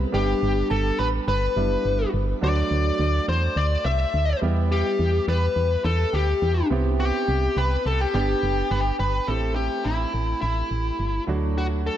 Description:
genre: pop.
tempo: 105 BPM.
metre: 4/4.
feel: straight.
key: G major.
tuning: A4 = 444 Hz.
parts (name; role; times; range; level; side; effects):
clear concert grand piano; accompaniment; 0.0-12.0 s; F#3 to G4; -29 LUFS; right 5 dB; none.
solid FM bass; bass; 0.0-11.9 s; F#1 to E2; -24 LUFS; equal; none.
smooth overdriven lead guitar; melody; 0.1-12.0 s; E4 to E5; -25 LUFS; left 3 dB; digital delay.
synth chime; second line; 0.1-9.0 s; G5 to E6; -36 LUFS; right 3 dB; ensemble chorus, phaser, digital delay.
room: moderate lush hall reverb, RT60 3.0 s.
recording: dark, warm production.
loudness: -21 LUFS.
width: side -11 dB against mid.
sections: 0.0-9.3 A section; 9.3-12.0 B section.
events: none.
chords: 0.1 G; 2.4 D; 4.4 Em; 6.7 Cmaj7; 8.1 Gmaj7; 9.3 Am7; 11.3 D.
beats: | 0.14 0.71 1.28 1.85 | 2.42 3.00 3.57 4.14 | 4.71 5.28 5.85 6.42 | 7.00 7.57 8.14 8.71 | 9.28 9.85 10.42 11.00 | 11.57.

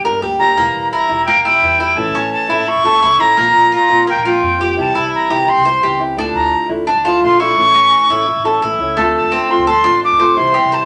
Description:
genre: latin.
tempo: 171 BPM.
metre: 4/4.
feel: straight.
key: D minor.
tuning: A4 = 441 Hz.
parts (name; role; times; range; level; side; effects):
nylon-string guitar; accompaniment; 0.0-10.9 s; C3 to G4; -24 LUFS; equal; none.
Cuban tres; arpeggios; 0.0-10.9 s; A3 to C5; -18 LUFS; equal; none.
upright bass; bass; 0.0-10.8 s; E1 to F2; -33 LUFS; equal; none.
breathy bright jazz flute; melody; 0.4-10.9 s; G5 to D6; -15 LUFS; equal; none.
room: wet studio reverb, RT60 0.6 s.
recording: none.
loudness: -13 LUFS.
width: mono.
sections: 0.0-9.0 A section; 9.0-10.9 B section.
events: none.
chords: 0.0 Gm; 0.6 Edim; 2.0 A; 3.4 Bbsus2; 4.8 C; 6.2 Dmadd9; 7.6 A; 9.0 Dm7.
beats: 0.22 | 0.57 0.92 1.27 1.62 | 1.97 2.32 2.67 3.02 | 3.37 3.72 4.07 4.42 | 4.77 5.12 5.47 5.82 | 6.17 6.52 6.87 7.22 | 7.57 7.92 8.27 8.62 | 8.97 9.32 9.67 10.02 | 10.37 10.72.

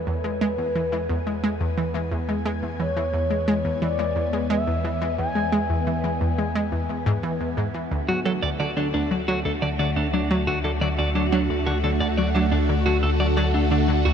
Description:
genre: ambient, sequencer-driven space music.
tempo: 88 BPM.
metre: 4/4.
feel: straight.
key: unclear.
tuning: A4 = 439 Hz.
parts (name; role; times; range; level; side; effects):
expressive synth lead; melody; 0.0-6.2 s; B4 to G#5; -29 LUFS; left 2 dB; wide subtle chorus, shimmer reverb, ping-pong delay.
phased string machine; sustained chords; 0.0-14.1 s; D3 to G#5; -28 LUFS; equal; ensemble chorus, phaser.
analog pluck; riff; 0.0-14.1 s; D2 to G#3; -25 LUFS; equal; chorus, ping-pong delay.
warm sub bass; bass; 0.0-14.1 s; D2 to E2; -28 LUFS; equal; none.
clean electric guitar; arpeggios; 8.1-14.1 s; D4 to D5; -26 LUFS; right 3 dB; auto-pan, shimmer reverb, ping-pong delay.
room: moderate huge ambient reverb, RT60 8.1 s.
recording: cassette tape.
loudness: -21 LUFS.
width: side -8 dB against mid.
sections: 0.0-14.1 A section.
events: fade-in on string machine 0.0-14.1; fade-in on sub bass 0.0-14.1.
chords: 0.0 E; 7.9 D.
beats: 0.41 1.10 1.78 | 2.46 3.14 3.82 4.50 | 5.19 5.87 6.55 7.23 | 7.91 8.60 9.28 9.96 | 10.64 11.32 12.01 12.69 | 13.37 14.05.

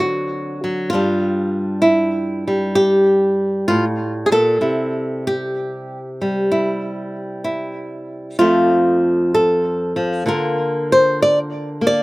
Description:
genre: solo jazz.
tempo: 65 BPM.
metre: 4/4.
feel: swing 68% on 8ths, rubato.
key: unclear.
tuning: A4 = 440 Hz.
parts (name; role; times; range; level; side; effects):
flamenco guitar; solo; 0.0-12.0 s; F2 to D5; -16 LUFS; equal; none.
room: little or no reverb.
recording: recorded outdoors, with no room sound.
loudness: -16 LUFS.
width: side -20 dB against mid.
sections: 0.0-12.0 A section.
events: none.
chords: 0.0 D7; 0.9 G7sus2; 4.6 C; 8.4 F; 10.3 Bbadd9/D.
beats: 0.01 | 0.93 1.85 2.78 3.70 | 4.63 5.57 6.51 7.45 | 8.40 9.33 10.27 11.20.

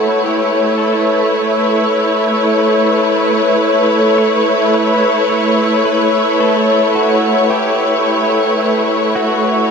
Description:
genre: ambient.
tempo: 54 BPM.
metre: 4/4.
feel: straight.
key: A mixolydian.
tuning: A4 = 439 Hz.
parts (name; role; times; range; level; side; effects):
pedal steel guitar; melody; 0.0-9.7 s; F#4 to C#5; -23 LUFS; right 1 dB; shimmer reverb, diffuse ambient delay.
rich studio string section; sustained chords; 0.0-9.7 s; A3 to C#5; -11 LUFS; equal; shimmer reverb.
room: wet huge ambient reverb, RT60 7.5 s.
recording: cassette tape.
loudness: -11 LUFS.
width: side -6 dB against mid.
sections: 0.0-9.7 A section.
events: fade-in on pedal steel guitar 0.0-9.7.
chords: 0.0 A7.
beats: | 0.84 1.95 3.06 4.17 | 5.28 6.39 7.50 8.61.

